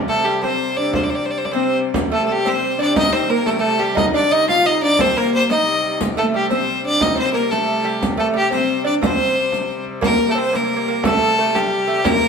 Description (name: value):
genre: medieval dance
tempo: 119 BPM (dotted quarters)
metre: 6/8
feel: straight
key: C dorian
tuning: A4 = 441 Hz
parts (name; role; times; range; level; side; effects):
- rich hurdy-gurdy; drone; 0.0-12.3 s; C3 to G3; -28 LUFS; left 3 dB; none
- clear fiddle; melody; 0.1-12.3 s; G4 to F5; -18 LUFS; left 1 dB; none
- dark viola da gamba; second line; 0.1-12.3 s; G3 to F4; -23 LUFS; left 2 dB; none
- lute; second line; 0.1-12.3 s; G3 to F4; -23 LUFS; right 4 dB; none
- frame drum; percussion; 0.3-12.3 s; none; -24 LUFS; right 3 dB; none
- riq; percussion; 2.0-12.2 s; none; -28 LUFS; left 3 dB; none
room: wet studio reverb, RT60 0.8 s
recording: band playing live in one room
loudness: -15 LUFS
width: side -6 dB against mid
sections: 0.0-1.9 A section; 1.9-10.0 A section; 10.0-12.3 B section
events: none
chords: none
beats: 0.42 | 0.93 1.44 | 1.95 2.46 | 2.96 3.47 | 3.98 4.48 | 4.99 5.50 | 6.00 6.51 | 7.01 7.52 | 8.02 8.52 | 9.03 9.53 | 10.04 10.54 | 11.04 11.54 | 12.04